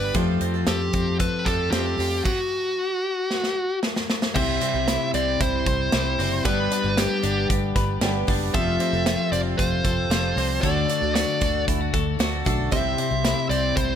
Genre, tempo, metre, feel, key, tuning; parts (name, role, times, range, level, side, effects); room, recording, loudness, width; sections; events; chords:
jangly indie pop; 115 BPM; 4/4; straight; A4 = 442 Hz
dark smooth lead guitar; melody; 0.0-14.0 s; F#4 to E5; -26 LUFS; equal; overdrive
picked twelve-string acoustic guitar; accompaniment; 0.0-14.0 s; G2 to A4; -31 LUFS; right 8 dB
warm upright piano; accompaniment; 0.0-14.0 s; G3 to C5; -34 LUFS; right 2 dB
twelve-string electric guitar; arpeggios; 0.0-14.0 s; C3 to C5; -27 LUFS; left 7 dB
vintage muted fingered electric bass; bass; 0.0-14.0 s; F1 to F2; -27 LUFS; right 1 dB
modern studio drum kit; drums; 0.1-13.9 s; crash cymbal, hi-hat, kick drum, snare drum; -26 LUFS; right 1 dB
light reverb; -20 LUFS; side -8 dB against mid
0.0-4.4 A section; 4.4-14.0 B section
drum fill 3.3-4.4
0.2 Fadd9; 2.3 N.C.; 4.4 C; 6.5 G; 8.5 Fadd9; 10.6 D; 12.7 C